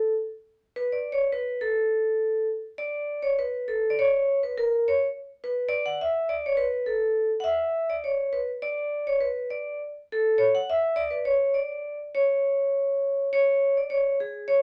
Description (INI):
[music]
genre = alpine folk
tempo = 103 BPM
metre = 2/4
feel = straight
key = D major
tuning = A4 = 440 Hz
[part]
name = vibraphone with hard mallets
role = solo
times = 0.0-14.6 s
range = G#4 to F#5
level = -26 LUFS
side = equal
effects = none
[sound]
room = wet studio reverb, RT60 0.5 s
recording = none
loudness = -26 LUFS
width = mono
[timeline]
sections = 0.0-2.8 A section; 2.8-12.1 B section; 12.1-14.6 C section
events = none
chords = none